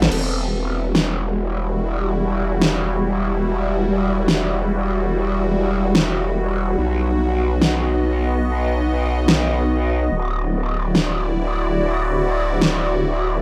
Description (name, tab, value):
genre	heavy wobble dubstep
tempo	free time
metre	none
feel	none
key	E minor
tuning	A4 = 440 Hz
part	evolving wavetable pad	sustained chords	0.0-13.4 s	G3 to D#5	-25 LUFS	equal	phaser, built-in reverb
part	growl bass	bass	0.0-13.4 s	D1 to B1	-23 LUFS	equal	chorus, overdrive
part	dubstep drum kit	drums	0.0-12.7 s	crash cymbal, snare drum	-22 LUFS	equal	overdrive
room	light reverb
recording	none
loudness	-20 LUFS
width	mono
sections	0.1-13.4 A section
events	none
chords	0.1 Emadd9; 6.8 B; 10.1 Dadd9